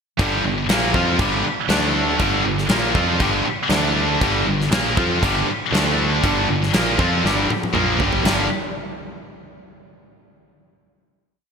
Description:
hard rock; 119 BPM; 4/4; straight; G minor; A4 = 439 Hz
distorted electric guitar; riff; 0.2-8.5 s; G2 to Bb4; -25 LUFS; equal; overdrive
scooped high-gain guitar; riff; 0.2-8.5 s; G2 to F4; -23 LUFS; left 10 dB; distortion
scooped high-gain guitar; riff; 0.2-8.5 s; G2 to F4; -23 LUFS; right 9 dB; distortion
picked electric bass; bass; 0.2-8.5 s; G1 to F2; -24 LUFS; equal
huge arena drum kit; drums; 0.2-8.4 s; crash cymbal, kick drum, snare drum, toms; -23 LUFS; equal
moderate lush hall reverb, RT60 2.5 s; bright 1980s-style digital production; -16 LUFS; side -6 dB against mid
0.2-8.3 riff; 8.3-10.3 final chord
drum fill 7.2-8.3
0.2 Gm; 1.7 D5; 2.2 Gm; 3.7 D5; 4.2 Gm; 5.7 D5; 6.2 Gm
| 0.19 0.69 1.19 1.70 | 2.20 2.70 3.21 3.71 | 4.22 4.72 5.23 5.73 | 6.24 6.74 7.25 7.75 | 8.26

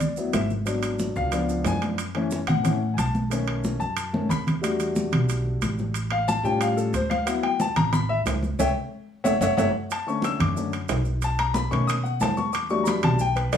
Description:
Afro-Cuban jazz; 182 BPM; 4/4; straight; D major, B minor from 9.9 s; A4 = 440 Hz
warm baby grand piano; accompaniment; 0.0-13.6 s; D3 to E6; -25 LUFS; left 3 dB
upright bass; bass; 0.0-13.6 s; F#1 to B2; -28 LUFS; equal
congas; percussion; 0.0-13.6 s; -28 LUFS; equal
maracas; percussion; 0.0-13.6 s; -41 LUFS; right 5 dB
timbales; percussion; 0.0-13.6 s; -31 LUFS; right 6 dB
moderate studio reverb, RT60 0.9 s; studio reverb; -22 LUFS; side -8 dB against mid
0.0-9.9 A section; 9.9-13.6 A section
grand piano solo 0.0-13.6; drum fill 4.1-4.6, 9.4-9.9; band accent 8.6-9.9
0.0 D69; 0.7 G#m7b5; 1.3 C#7b9; 2.0 F#m7; 3.3 B7; 4.6 Em11; 5.9 Aaug7; 7.3 D69; 8.6 C#dim; 9.2 F#5; 9.9 Bm7; 11.2 B7; 12.5 Em11
0.01 0.34 | 0.67 1.00 1.33 1.66 | 1.99 2.32 2.65 2.98 | 3.31 3.64 3.97 4.30 | 4.63 4.96 5.29 5.62 | 5.95 6.28 6.61 6.94 | 7.27 7.60 7.93 8.26 | 8.59 8.92 9.25 9.58 | 9.91 10.23 10.56 10.89 | 11.22 11.55 11.88 12.21 | 12.54 12.87 13.20 13.53

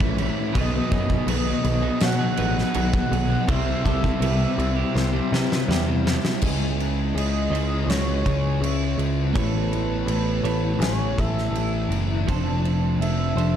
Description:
rock, shoegaze and dream pop; 82 BPM; 4/4; straight; A4 = 440 Hz
fingerpicked twelve-string acoustic guitar; arpeggios; 0.0-13.6 s; E4 to G#5; -35 LUFS; left 1 dB; wide subtle chorus, digital delay
electric guitar at the edge of break-up; riff; 0.0-13.6 s; A2 to D#5; -29 LUFS; right 11 dB; reverse reverb
overdriven electric guitar; riff; 0.0-6.4 s; A2 to C4; -28 LUFS; left 1 dB
thick fuzz guitar; riff; 0.0-13.6 s; F2 to C#4; -28 LUFS; left 9 dB; distortion, analog chorus
picked electric bass; bass; 0.0-13.6 s; F1 to C3; -25 LUFS; equal
huge arena drum kit; drums; 0.0-13.6 s; crash cymbal, kick drum, snare drum; -28 LUFS; equal
reedy FM lead; melody; 0.6-13.6 s; B4 to F#5; -31 LUFS; right 2 dB; chorus, tremolo, digital delay
small room ambience; dark, warm production; -20 LUFS; side -9 dB against mid
0.0-6.4 A section; 6.4-13.6 B section
drum fill 5.0-6.4
0.0 A; 0.5 B6; 3.5 Cmaj7; 6.4 C#madd9; 9.4 Aadd9; 12.3 F6
| 0.55 1.28 2.02 2.75 | 3.48 4.22 4.95 5.68 | 6.42 7.15 7.88 8.62 | 9.35 10.08 10.82 11.55 | 12.28 13.01

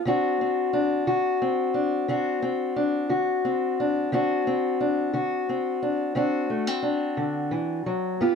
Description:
blues; 59 BPM (dotted quarters); 12/8; straight; D mixolydian; A4 = 440 Hz
fingerpicked steel-string acoustic guitar; solo; 0.1-8.3 s; G2 to G4; -23 LUFS; left 2 dB
light reverb; dry, close 1970s-style studio recording; -23 LUFS; side -6 dB against mid
0.0-8.3 A section
0.0 D7
| 0.05 1.07 2.08 3.10 | 4.12 5.14 6.16 7.18 | 8.20

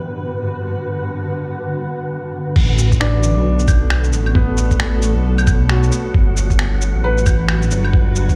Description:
future garage; 134 BPM; 4/4; swing 60% on 16ths; A4 = 440 Hz
granular cloud pad; sustained chords; 0.0-8.4 s; G2 to B4; -26 LUFS; equal; built-in reverb, sidechain pumping
wind-like tuned noise texture; texture; 0.0-8.4 s; F#3 to F#5; -33 LUFS; equal; built-in reverb
dark detuned saw bass; bass; 2.6-8.4 s; G1 to B1; -18 LUFS; equal; tube saturation, sidechain pumping
electronic kick drum; drums; 2.6-8.4 s; -17 LUFS; equal
lo-fi sampler-style drum kit; drums; 2.6-8.4 s; claves, crash cymbal, finger snaps, shaker; -26 LUFS; equal
felt-muted upright piano; accompaniment; 3.0-8.4 s; B3 to B4; -27 LUFS; equal; sidechain pumping, digital delay
digital ambience; played on a big sound system in a bare room, large studio reverb; -17 LUFS; mono
0.0-2.6 A section; 2.6-8.4 B section
0.0 Gmaj7; 2.6 Asus24; 6.1 Gmaj7
0.32 | 0.77 1.22 1.67 2.11 | 2.56 3.01 3.46 3.90 | 4.35 4.80 5.25 5.70 | 6.14 6.59 7.04 7.49 | 7.93

